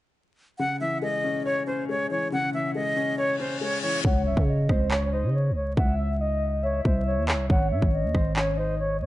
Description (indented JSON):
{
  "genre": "hip hop, drill",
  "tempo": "139 BPM",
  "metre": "4/4",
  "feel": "half-time",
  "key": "C# harmonic minor",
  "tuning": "A4 = 441 Hz",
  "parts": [
    { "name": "breathy silver concert flute", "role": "melody", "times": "0.6-9.1 s", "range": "B#4 to F#5", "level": "-28 LUFS", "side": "equal", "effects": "low-pass filter" },
    { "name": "felt-muted upright piano", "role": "accompaniment", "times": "0.6-4.1 s", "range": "C#3 to C#5", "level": "-29 LUFS", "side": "left 3 dB", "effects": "none" },
    { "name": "reverse cymbal and impact", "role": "sound effects", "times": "3.3-5.8 s", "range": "none", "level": "-35 LUFS", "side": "left 2 dB", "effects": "none" },
    { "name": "soft octave-layered synth lead", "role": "second line", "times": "4.0-8.8 s", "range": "B#4 to E5", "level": "-31 LUFS", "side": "left 1 dB", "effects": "chorus, phaser, ping-pong delay" },
    { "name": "growling 808-style bass", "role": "bass", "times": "4.0-9.1 s", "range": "G#1 to C#3", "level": "-25 LUFS", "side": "equal", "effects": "none" },
    { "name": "drill drum kit", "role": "drums", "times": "4.0-8.5 s", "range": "handclaps, kick drum, rim click", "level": "-24 LUFS", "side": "equal", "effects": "none" }
  ],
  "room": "digital ambience",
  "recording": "vinyl crackle, nothing above 11.0 kHz",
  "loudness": "-23 LUFS",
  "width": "side -16 dB against mid",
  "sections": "0.6-4.0 A section; 4.0-9.1 B section",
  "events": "reverse cymbal 3.3-4.0; hi-hats muted 4.0-9.1; impact 4.0-5.8",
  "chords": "0.6 C#m; 7.5 G#sus4",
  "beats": "| 0.59 1.02 1.46 1.89 | 2.32 2.75 3.18 3.61 | 4.05 4.48 4.91 5.34 | 5.77 6.20 6.64 7.07 | 7.50 7.93 8.36 8.79"
}